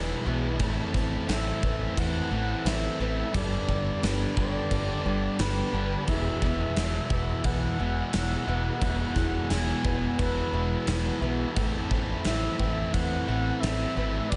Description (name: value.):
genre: rock, shoegaze and dream pop.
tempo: 88 BPM.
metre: 4/4.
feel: straight.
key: unclear.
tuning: A4 = 437 Hz.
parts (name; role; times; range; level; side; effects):
reedy FM lead; melody; 0.0-14.4 s; B4 to G#5; -37 LUFS; equal; chorus, slapback echo.
warbly tape-like pad; sustained chords; 0.0-14.4 s; D4 to E6; -45 LUFS; equal; chorus, built-in reverb.
picked twelve-string acoustic guitar; arpeggios; 0.0-14.4 s; G3 to B4; -41 LUFS; equal; analog chorus, slapback echo.
crunchy overdriven guitar; riff; 0.0-14.4 s; G2 to E4; -37 LUFS; equal; reverse reverb.
overdriven semi-hollow guitar; riff; 0.0-14.4 s; E2 to A3; -38 LUFS; equal; none.
thick fuzz guitar; riff; 0.0-14.4 s; E2 to A3; -37 LUFS; equal; distortion, lush chorus.
deep dub picked electric bass; bass; 0.0-14.4 s; E1 to E2; -33 LUFS; equal; none.
gated 80s drum kit; drums; 0.6-14.4 s; crash cymbal, kick drum, snare drum; -34 LUFS; equal; none.
room: small room reverb.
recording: nothing above 10.3 kHz.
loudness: -28 LUFS.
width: mono.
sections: 0.0-14.4 A section.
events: none.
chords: 0.0 Eadd9; 0.6 Amadd9; 3.3 G; 6.1 Eadd9; 11.6 Amadd9.